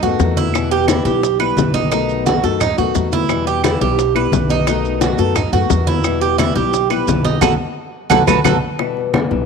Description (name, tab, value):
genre	latin, Cuban son and guajira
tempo	174 BPM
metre	4/4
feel	straight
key	E harmonic minor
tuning	A4 = 440 Hz
part	nylon-string guitar	accompaniment	0.0-9.5 s	B2 to F#4	-21 LUFS	left 11 dB	none
part	Cuban tres	arpeggios	0.0-8.6 s	D#4 to B4	-18 LUFS	right 11 dB	none
part	upright bass	bass	0.0-9.5 s	B1 to F#2	-21 LUFS	equal	none
part	bongos	percussion	0.0-9.5 s	none	-22 LUFS	left 12 dB	none
part	congas	percussion	0.0-9.3 s	none	-21 LUFS	left 1 dB	none
part	maracas	percussion	0.0-8.5 s	none	-31 LUFS	right 12 dB	none
part	claves	percussion	0.5-9.3 s	none	-25 LUFS	right 15 dB	none
room	moderate echo chamber reverb, RT60 2.5 s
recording	1960s-style stereo with parts hard left and right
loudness	-14 LUFS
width	side -5 dB against mid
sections	0.0-8.8 A section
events	band accent 7.4-8.8; drum fill 7.8-8.8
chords	0.0 B7; 0.5 Em; 1.9 B7; 3.3 Em; 4.7 B7; 6.0 Em; 7.4 B5; 8.8 Em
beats	0.20 | 0.55 0.89 1.23 1.58 | 1.92 2.26 2.61 2.95 | 3.30 3.64 3.98 4.33 | 4.67 5.02 5.36 5.70 | 6.05 6.39 6.74 7.08 | 7.42 7.77 8.11 8.46 | 8.80 9.14